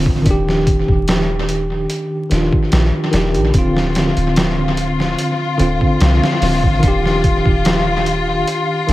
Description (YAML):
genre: trip hop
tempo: 73 BPM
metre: 4/4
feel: straight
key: unclear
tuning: A4 = 440 Hz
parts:
  - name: bell-like tine electric piano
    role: accompaniment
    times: 0.0-8.9 s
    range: D3 to G4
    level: -18 LUFS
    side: equal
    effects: medium stereo tremolo, tape echo
  - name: soft 808-style bass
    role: bass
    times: 0.0-8.9 s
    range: D1 to C2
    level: -19 LUFS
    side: equal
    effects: none
  - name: trip hop sampler-style drum kit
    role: drums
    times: 0.1-8.9 s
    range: hi-hat, kick drum, snare drum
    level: -18 LUFS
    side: equal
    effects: tape echo
  - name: warm symphonic string section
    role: sustained chords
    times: 3.5-8.9 s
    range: F4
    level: -20 LUFS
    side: left 4 dB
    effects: vintage 12-bit sampler grit
room: light reverb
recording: echo-heavy mix, vinyl crackle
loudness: -13 LUFS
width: side -16 dB against mid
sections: 0.0-8.9 A section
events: none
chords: 0.3 Ebmaj7; 3.5 Dm7; 6.8 Ebmaj7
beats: | 0.26 1.08 1.90 2.72 | 3.54 4.37 5.19 6.01 | 6.83 7.65 8.47